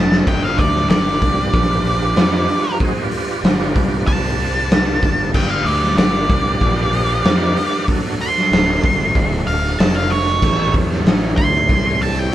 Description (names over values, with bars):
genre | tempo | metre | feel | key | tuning
blues rock power trio and southern rock | 94 BPM | 4/4 | straight | unclear | A4 = 441 Hz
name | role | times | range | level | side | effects
octave-fuzz lead guitar | melody | 0.0-12.3 s | C#5 to C6 | -20 LUFS | right 1 dB | distortion
overdriven tonewheel organ | sustained chords | 0.0-12.3 s | E3 to F5 | -25 LUFS | right 3 dB | chorus vibrato, fast rotary speaker
fuzz fingered electric bass | bass | 0.0-12.3 s | D1 to F2 | -21 LUFS | equal | overdrive
raw garage drum kit | drums | 0.1-12.3 s | crash cymbal, hi-hat, kick drum, snare drum | -17 LUFS | equal | none
room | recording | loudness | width
light reverb | band playing live in one room | -14 LUFS | side -13 dB against mid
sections
0.0-12.3 A section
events
drum fill 0.0; lead electric guitar solo 0.0-12.3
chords
0.3 G7; 7.9 D7; 10.4 A7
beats
| 0.28 0.91 1.54 2.18 | 2.81 3.44 4.08 4.71 | 5.35 5.98 6.62 7.25 | 7.88 8.52 9.15 9.79 | 10.43 11.06 11.70 12.33